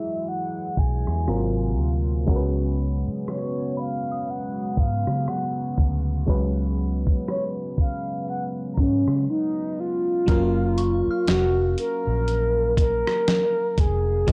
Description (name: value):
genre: contemporary R&B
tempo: 60 BPM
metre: 4/4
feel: swing 58% on 16ths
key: F# major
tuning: A4 = 439 Hz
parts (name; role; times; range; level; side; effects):
- mellow horn-like synth lead; melody; 0.0-14.3 s; C#4 to A#5; -27 LUFS; equal; chorus
- FM electric piano; accompaniment; 0.0-14.3 s; F#3 to E#5; -33 LUFS; equal; chorus
- chorused pulse-width pad; sustained chords; 0.0-10.2 s; B#2 to E#4; -34 LUFS; equal; none
- dusty soul sampler-style drum kit; drums; 0.3-14.3 s; hi-hat, kick drum, rim click, snare drum; -26 LUFS; equal; none
- vintage muted fingered electric bass; bass; 0.8-14.3 s; E1 to C#3; -27 LUFS; equal; transformer saturation
- soft synth bell; texture; 3.8-13.0 s; B5 to E#6; -46 LUFS; equal; chorus, phaser, tape echo
room: digital ambience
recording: dry, gritty hardware recording, cassette tape, low-pass filter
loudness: -24 LUFS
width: mono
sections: 0.0-10.3 A section; 10.3-14.3 B section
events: filter sweep 0.0-10.3; silent gap 9.3-10.3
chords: 0.0 Eadd9; 1.3 G#13; 2.3 C#7sus4; 10.3 F#maj7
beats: 0.28 1.28 | 2.28 3.28 4.28 5.28 | 6.28 7.28 8.28 9.28 | 10.28 11.28 12.28 13.28 | 14.28